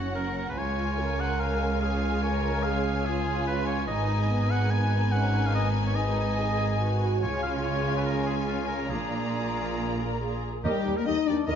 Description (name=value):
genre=cinematic, heroic adventure film score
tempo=143 BPM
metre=4/4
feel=straight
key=unclear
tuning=A4 = 441 Hz
part: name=warm symphonic violin section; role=melody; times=0.0-11.6 s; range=G4 to A#5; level=-35 LUFS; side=left 3 dB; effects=none
part: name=clear oboe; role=second line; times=0.0-11.6 s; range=E#4 to G#5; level=-33 LUFS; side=right 1 dB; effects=none
part: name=rich symphonic violin section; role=second line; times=0.0-11.6 s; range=D#4 to D5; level=-36 LUFS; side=left 5 dB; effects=none
part: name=dark symphonic viola section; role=accompaniment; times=0.0-11.6 s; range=B3 to Eb5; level=-34 LUFS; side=right 2 dB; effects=none
part: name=rich symphonic cello section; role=bass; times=0.0-11.6 s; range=C#2 to C#3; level=-30 LUFS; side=right 1 dB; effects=none
part: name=rich symphonic double bass section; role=bass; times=0.0-11.6 s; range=F#1 to Eb2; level=-30 LUFS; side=right 2 dB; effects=none
part: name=mellow clarinet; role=second line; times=10.6-11.6 s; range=Bb4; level=-39 LUFS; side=right 1 dB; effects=none
part: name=silver concert flute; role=second line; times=10.6-11.6 s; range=Eb5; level=-38 LUFS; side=left 1 dB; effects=none
part: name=dark French horn section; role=sustained chords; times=10.7-11.6 s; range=G3 to Eb4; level=-26 LUFS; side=left 6 dB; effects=none
room=moderate scoring stage reverb, RT60 1.8 s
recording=nothing above 7.6 kHz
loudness=-25 LUFS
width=side -8 dB against mid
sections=0.0-10.7 A section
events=none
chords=0.0 F#; 0.6 C#; 3.9 G#m; 7.2 C#; 8.9 A#7; 10.7 Eb